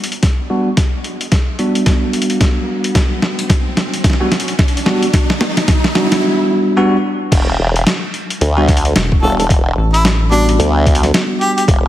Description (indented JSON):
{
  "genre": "glitch hop",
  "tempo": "110 BPM",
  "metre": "4/4",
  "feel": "swing 60% on 16ths",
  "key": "E minor",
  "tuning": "A4 = 441 Hz",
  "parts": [
    { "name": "boom bap sampler-style drum kit", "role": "drums", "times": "0.0-11.8 s", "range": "crash cymbal, hi-hat, snare drum", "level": "-18 LUFS", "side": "equal", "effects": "none" },
    { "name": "riser", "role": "sound effects", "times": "0.7-6.2 s", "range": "none", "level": "-26 LUFS", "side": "right 1 dB", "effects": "none" },
    { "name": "electronic kick drum", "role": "drums", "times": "0.2-11.8 s", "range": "none", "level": "-14 LUFS", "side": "equal", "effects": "none" },
    { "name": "bell-like tine electric piano", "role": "stabs", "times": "0.5-11.9 s", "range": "G3 to F#4", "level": "-17 LUFS", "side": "equal", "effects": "lush chorus, sidechain pumping, low-pass filter, tape echo" },
    { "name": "formant-sweep wobble bass", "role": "bass", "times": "7.3-11.9 s", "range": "E1 to D2", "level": "-14 LUFS", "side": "equal", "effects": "chorus" },
    { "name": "rubbery square bass", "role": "bass", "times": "9.0-10.6 s", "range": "E1 to A1", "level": "-14 LUFS", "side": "equal", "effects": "tube saturation" },
    { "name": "warm harmonica", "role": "melody", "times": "9.2-11.6 s", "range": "D4 to A4", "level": "-18 LUFS", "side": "equal", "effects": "tape echo" }
  ],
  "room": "moderate lush hall reverb, RT60 2.2 s",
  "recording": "heavily compressed radio sound",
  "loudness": "-12 LUFS",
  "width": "side -13 dB against mid",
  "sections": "0.0-7.3 A section; 7.3-11.9 B section",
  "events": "build-up 0.0-7.3; drum fill 0.0-6.2; filter sweep on tine electric piano 0.0-7.3; riser 0.7-6.2; drop 7.3-11.9",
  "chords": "0.0 Gmaj7; 7.3 Em7",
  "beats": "0.23 | 0.77 1.32 1.86 2.41 | 2.95 3.50 4.04 4.59 | 5.14 5.68 6.23 6.77 | 7.32 7.86 8.41 8.95 | 9.50 10.04 10.59 11.14 | 11.68"
}